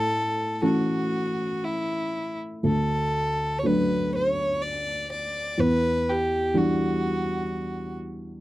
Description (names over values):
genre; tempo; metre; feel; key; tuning
celtic folk, Celtic slow air; 59-65 BPM; 3/4; rubato; unclear; A4 = 440 Hz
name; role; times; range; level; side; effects
rich fiddle; melody; 0.0-8.0 s; E4 to D5; -26 LUFS; equal; none
dark upright piano; accompaniment; 0.0-8.4 s; D2 to D4; -26 LUFS; equal; none
room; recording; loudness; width
little or no reverb; dry, close 1970s-style studio recording; -23 LUFS; side -16 dB against mid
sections
0.0-8.4 A section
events
none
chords
0.0 A; 2.6 D; 5.6 Em7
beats
0.63 1.62 | 2.64 3.64 4.62 | 5.58 6.55 7.49